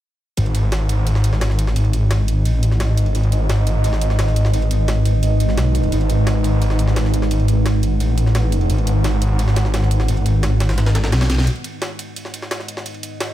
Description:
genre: dark technical drum and bass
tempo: 173 BPM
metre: 4/4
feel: straight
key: G# phrygian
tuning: A4 = 440 Hz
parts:
  - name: deep dark ambient pad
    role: sustained chords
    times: 2.3-13.3 s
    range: G#3 to F#5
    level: -25 LUFS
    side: right 2 dB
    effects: chorus, built-in reverb
  - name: snarling distorted saw bass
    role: bass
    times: 0.4-11.5 s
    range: G#1 to B1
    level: -16 LUFS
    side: equal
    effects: distortion, overdrive
  - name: drum and bass drum kit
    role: drums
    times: 0.4-13.3 s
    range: hi-hat, snare drum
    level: -28 LUFS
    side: right 1 dB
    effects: overdrive
  - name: jungle sampler-style drum kit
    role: drums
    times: 0.4-13.3 s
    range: ride cymbal, snare drum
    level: -28 LUFS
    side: equal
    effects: overdrive, high-pass filter on cymbals, high-pass filter on snare
room: digital ambience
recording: none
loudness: -15 LUFS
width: side -13 dB against mid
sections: 0.4-11.5 A section; 11.5-13.3 B section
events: drum fill 11.1-11.5; build-up 11.5-13.3; filter sweep 11.5-13.3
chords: 0.4 G#m

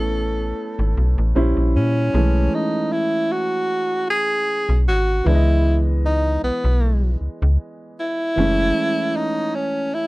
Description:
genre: R&B, neo-soul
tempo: 77 BPM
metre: 4/4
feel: swing 53% on 16ths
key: unclear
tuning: A4 = 441 Hz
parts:
  - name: clear tenor saxophone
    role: melody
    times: 0.0-10.1 s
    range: B3 to A4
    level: -21 LUFS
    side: equal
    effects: slapback echo
  - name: clear concert grand piano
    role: accompaniment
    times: 0.0-10.1 s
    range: E3 to D#5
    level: -24 LUFS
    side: right 1 dB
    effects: none
  - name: slap-like FM bass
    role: bass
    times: 0.0-8.7 s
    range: F#1 to A#2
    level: -18 LUFS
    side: equal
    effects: none
room: little or no reverb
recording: dry, close 1970s-style studio recording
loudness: -17 LUFS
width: side -21 dB against mid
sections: 0.0-2.1 A section; 2.1-10.1 B section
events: none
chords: 0.0 Aadd9; 1.3 A#dim7; 2.1 B13sus4; 5.2 C#m9; 8.4 F#m9

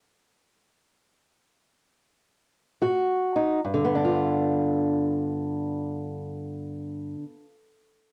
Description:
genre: blues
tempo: free time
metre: none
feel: none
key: G mixolydian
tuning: A4 = 439 Hz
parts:
  - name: fingerpicked old ladder-braced acoustic guitar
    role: accompaniment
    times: 2.8-7.5 s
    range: G2 to F#4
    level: -27 LUFS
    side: equal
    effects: cassette tape
room: light reverb, small room ambience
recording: home recording on cassette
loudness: -27 LUFS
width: mono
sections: 0.0-3.6 A section; 3.6-6.9 B section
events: slowing down 0.0-3.6; stop 0.0-2.8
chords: 0.0 N.C.; 2.8 Ab5; 3.6 G7

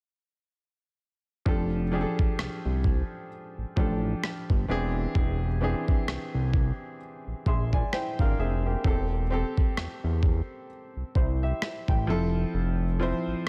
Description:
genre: contemporary R&B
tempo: 65 BPM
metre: 4/4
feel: swing 58% on 16ths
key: F major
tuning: A4 = 435 Hz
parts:
  - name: clear grand piano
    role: accompaniment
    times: 1.5-13.5 s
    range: E3 to B#5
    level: -34 LUFS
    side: equal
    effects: none
  - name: fat analog bass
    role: bass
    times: 1.5-13.5 s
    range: E1 to E2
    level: -30 LUFS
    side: equal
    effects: none
  - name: dusty soul sampler-style drum kit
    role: drums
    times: 1.5-13.5 s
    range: kick drum, rim click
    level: -28 LUFS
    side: equal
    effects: overdrive
room: digital ambience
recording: none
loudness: -27 LUFS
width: mono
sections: 1.5-13.5 A section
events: grand piano fill 7.0-8.8; kick muted 12.5-13.5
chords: 1.5 F69; 4.7 E7alt; 8.8 Am7/E; 12.1 Fmaj9

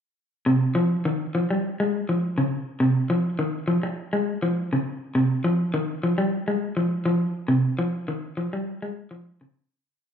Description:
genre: afrobeat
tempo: 103 BPM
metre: 4/4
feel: swing 53% on 16ths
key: unclear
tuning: A4 = 436 Hz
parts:
  - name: electric guitar through a small old amp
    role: solo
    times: 0.5-9.6 s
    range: C3 to Ab3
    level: -22 LUFS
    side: equal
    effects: spring reverb
room: wet large studio reverb, RT60 0.9 s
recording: band playing live in one room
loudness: -22 LUFS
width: side -8 dB against mid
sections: 0.5-9.8 groove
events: fade-out 7.5-9.8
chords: none

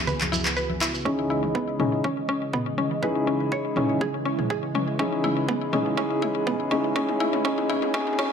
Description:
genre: afro house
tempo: 122 BPM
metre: 4/4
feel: swing 54% on 16ths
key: C# minor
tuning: A4 = 440 Hz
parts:
  - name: warm analog pad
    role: sustained chords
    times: 0.0-8.3 s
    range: C#2 to D#5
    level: -30 LUFS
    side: right 3 dB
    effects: wide subtle chorus, sidechain pumping
  - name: felt-muted upright piano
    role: stabs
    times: 0.0-8.3 s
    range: C#3 to G#4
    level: -27 LUFS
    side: left 2 dB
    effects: sidechain pumping, low-pass filter, ping-pong delay
  - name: mallet-like synth pluck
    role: arpeggios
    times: 0.1-8.3 s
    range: B3 to C#5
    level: -27 LUFS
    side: equal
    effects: chorus, sidechain pumping, ping-pong delay
  - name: congas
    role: percussion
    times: 0.1-0.8 s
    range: none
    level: -31 LUFS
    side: left 3 dB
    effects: none
  - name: shekere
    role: percussion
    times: 0.1-1.0 s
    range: none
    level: -33 LUFS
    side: right 5 dB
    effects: none
  - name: deep house drum kit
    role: drums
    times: 0.2-8.3 s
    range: handclaps, toms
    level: -31 LUFS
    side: equal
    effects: overdrive
  - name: electronic kick drum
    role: drums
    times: 1.1-8.1 s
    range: none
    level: -33 LUFS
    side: equal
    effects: overdrive, high-pass filter on kick
room: moderate plate reverb, RT60 1.4 s, small room ambience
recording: high-pass filter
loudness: -22 LUFS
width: side -7 dB against mid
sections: 0.0-1.1 A section; 1.1-8.3 B section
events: build-up 1.1-8.3; drum fill 1.1-8.3; filter sweep on synth arpeggio sound 1.1-8.3; filter sweep on felt piano 1.1-8.3; filter sweep 1.1-8.3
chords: 0.0 E6/C#; 1.1 C#madd9

